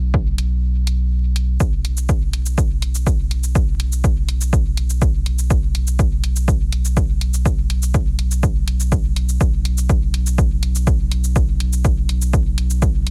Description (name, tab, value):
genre	dub techno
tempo	123 BPM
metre	4/4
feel	straight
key	unclear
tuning	A4 = 439 Hz
part	soft dub sub bass	bass	0.0-13.1 s	B1	-21 LUFS	equal	sidechain pumping
part	electronic kick drum	drums	0.1-12.9 s	none	-21 LUFS	equal	overdrive
part	electronic hi-hat and shaker	drums	0.4-13.1 s	none	-31 LUFS	equal	overdrive
room	little or no reverb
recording	vinyl crackle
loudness	-19 LUFS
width	mono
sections	0.0-13.1 A section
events	kick drops out 0.6-1.6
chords	none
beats	0.14 0.63 1.11 | 1.60 2.09 2.58 3.07 | 3.55 4.04 4.53 5.02 | 5.50 5.99 6.48 6.97 | 7.46 7.94 8.43 8.92 | 9.41 9.89 10.38 10.87 | 11.36 11.85 12.33 12.82